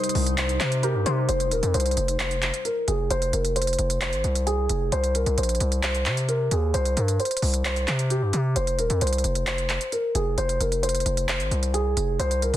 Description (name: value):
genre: hip hop, trap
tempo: 132 BPM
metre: 4/4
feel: half-time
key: F minor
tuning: A4 = 440 Hz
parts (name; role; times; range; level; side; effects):
- felt-muted upright piano; melody; 0.0-12.6 s; G4 to C5; -26 LUFS; equal; low-pass filter
- warbly dusty pluck; second line; 0.0-1.3 s; Bb4 to Eb5; -31 LUFS; left 1 dB; chorus, digital delay
- glassy FM pad; sustained chords; 0.0-1.2 s; C3 to Eb4; -34 LUFS; equal; ensemble chorus, built-in reverb
- trap drum kit; drums; 0.0-12.6 s; handclaps, hi-hat; -28 LUFS; right 1 dB; vintage 12-bit sampler grit
- distorted 808-style bass; bass; 0.1-12.6 s; Eb1 to C3; -25 LUFS; equal; distortion
room: light reverb, digital ambience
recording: dense, heavily limited modern master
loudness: -22 LUFS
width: side -13 dB against mid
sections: 0.0-1.3 A section; 1.3-12.6 B section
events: filter sweep on felt piano 1.3-12.6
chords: 0.0 Cm; 1.3 F5; 4.9 N.C.; 8.6 F5